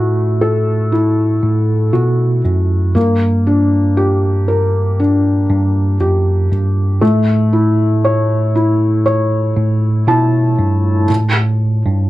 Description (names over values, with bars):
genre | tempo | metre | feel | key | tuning
pop ballad | 59 BPM | 4/4 | straight | unclear | A4 = 435 Hz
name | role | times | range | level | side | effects
felt-muted upright piano | accompaniment | 0.0-11.1 s | A3 to A5 | -15 LUFS | left 1 dB | none
bell-like tine electric piano | bass | 0.0-12.1 s | F#2 to B2 | -14 LUFS | right 1 dB | fast stereo tremolo
room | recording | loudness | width
little or no reverb | dry, close 1970s-style studio recording | -12 LUFS | side -16 dB against mid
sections
0.0-11.1 A section; 11.1-12.1 B section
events
felt piano fill 9.6-11.1; felt piano solo 11.1-12.1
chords
0.0 F#m7/A; 3.0 Gm; 7.0 A; 11.1 N.C.